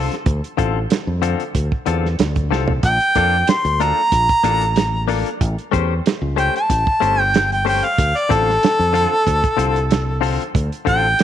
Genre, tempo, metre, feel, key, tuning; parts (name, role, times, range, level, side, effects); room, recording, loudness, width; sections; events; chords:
straight-eighth soul blues; 93 BPM; 4/4; swing 53% on 16ths; D minor; A4 = 440 Hz
direct-recorded clean electric guitar; stabs; 0.0-11.1 s; D3 to B#4; -24 LUFS; left 10 dB
fingered electric bass; bass; 0.0-11.1 s; G1 to F2; -21 LUFS; equal
warm soul drum kit; drums; 0.1-11.2 s; hi-hat, kick drum, snare drum, toms; -21 LUFS; right 4 dB
clear harmonica; melody; 2.9-11.2 s; A4 to C6; -17 LUFS; equal; overdrive
light reverb, small room reverb; 1960s-style stereo; -15 LUFS; side -10 dB against mid
0.0-11.2 A section
harmonica solo 0.0-11.2; drum fill 2.5-2.8
0.0 Dm7; 2.8 Bbmaj7; 5.4 A7#9; 8.0 Dm7